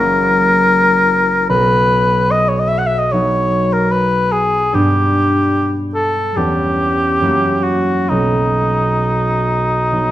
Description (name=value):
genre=classical, romantic duo for cor anglais and harp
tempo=65-76 BPM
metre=4/4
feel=rubato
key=B major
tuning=A4 = 440 Hz
part: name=mellow cor anglais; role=melody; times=0.0-10.1 s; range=D#4 to F#5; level=-14 LUFS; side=left 1 dB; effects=none
part: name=concert harp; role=accompaniment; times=0.0-10.1 s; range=F#1 to E4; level=-16 LUFS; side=right 1 dB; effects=none
room=moderate recital hall reverb, RT60 1.4 s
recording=none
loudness=-12 LUFS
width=side -13 dB against mid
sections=0.0-10.1 A section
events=none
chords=0.0 F#7; 1.5 B; 4.7 G; 6.4 C#m7b5/E; 7.2 F#7b9; 8.1 B